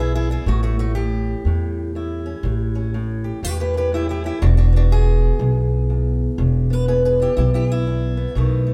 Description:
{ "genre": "acoustic country blues, solo or duo", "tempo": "122 BPM", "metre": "4/4", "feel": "swing 61% on 8ths", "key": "unclear", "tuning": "A4 = 443 Hz", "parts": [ { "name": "fingerpicked acoustic archtop guitar", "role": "melody", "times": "0.0-8.7 s", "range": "E2 to B4", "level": "-26 LUFS", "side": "equal", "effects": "none" }, { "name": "upright bass", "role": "bass", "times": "0.0-8.7 s", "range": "E1 to E2", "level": "-21 LUFS", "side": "equal", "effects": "none" } ], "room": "moderate stone room reverb, RT60 1.2 s", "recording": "band playing live in one room", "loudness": "-20 LUFS", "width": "mono", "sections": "0.0-8.7 A section", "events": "none", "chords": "0.5 A7; 4.4 E7" }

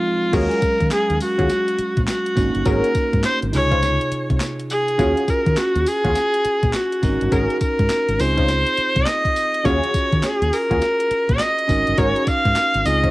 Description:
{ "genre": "R&B, new jack swing", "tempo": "103 BPM", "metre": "4/4", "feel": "swing 63% on 16ths", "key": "Eb dorian", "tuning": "A4 = 439 Hz", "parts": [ { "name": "rich viola", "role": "melody", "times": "0.0-13.1 s", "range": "F4 to F5", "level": "-19 LUFS", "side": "equal", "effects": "cassette tape" }, { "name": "bell-like tine electric piano", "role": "accompaniment", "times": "0.0-13.1 s", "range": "C3 to F5", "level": "-26 LUFS", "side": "right 2 dB", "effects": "cassette tape" }, { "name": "funky polysynth comp", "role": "stabs", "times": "0.3-13.1 s", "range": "Db4 to C5", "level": "-25 LUFS", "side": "left 1 dB", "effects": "chorus, cassette tape" }, { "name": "fingered electric bass", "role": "bass", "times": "0.3-13.1 s", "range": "G1 to Eb3", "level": "-22 LUFS", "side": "equal", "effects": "tube saturation" }, { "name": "clean 12-bit digital drum machine", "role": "drums", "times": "0.3-13.1 s", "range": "crash cymbal, handclaps, hi-hat, kick drum, snare drum, tambourine", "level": "-24 LUFS", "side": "equal", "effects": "overdrive, cassette tape" } ], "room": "light reverb", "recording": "home recording on cassette", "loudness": "-16 LUFS", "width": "side -19 dB against mid", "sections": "0.3-13.1 A section", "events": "break 0.0-0.3; band accent 0.0-0.3", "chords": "0.3 Ebm11; 2.4 Ab9sus4; 3.5 Dbmaj9; 5.0 Ebm11; 7.0 Ab9sus4; 8.2 Dbmaj9; 9.7 Ebm11; 11.7 Ab9sus4" }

